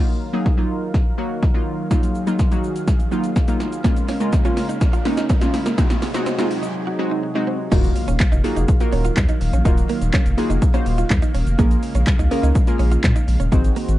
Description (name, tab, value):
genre	dance-pop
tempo	124 BPM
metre	4/4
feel	straight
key	Eb dorian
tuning	A4 = 440 Hz
part	glassy wavetable pluck	accompaniment	0.0-13.9 s	Gb3 to C5	-24 LUFS	equal	chorus, sidechain pumping
part	soft supersaw	sustained chords	0.0-14.0 s	C3 to F5	-29 LUFS	equal	sidechain pumping
part	riser and impact	sound effects	2.8-9.7 s	none	-32 LUFS	equal	none
part	punchy analog drum machine	drums	0.5-14.0 s	crash cymbal, handclaps, hi-hat, kick drum, shaker, snare drum	-18 LUFS	equal	none
part	direct-recorded clean electric guitar	riff	3.8-13.9 s	Ab3 to Gb4	-28 LUFS	right 5 dB	wide subtle chorus
part	saturated sub bass	bass	7.7-14.0 s	Eb1 to Bb2	-19 LUFS	equal	sidechain pumping
room	light reverb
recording	dark, warm production, nothing above 10.9 kHz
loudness	-16 LUFS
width	side -15 dB against mid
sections	0.0-7.7 A section; 7.7-14.0 B section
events	build-up 0.0-7.7; drum fill 0.0-6.7; riser 2.8-7.7; break 6.7-7.7; drop 7.7-14.0; impact 7.7-9.7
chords	0.0 Ebmadd9; 3.8 Bbm7; 5.8 Ab7; 7.7 Ebmadd9; 11.6 Bbm7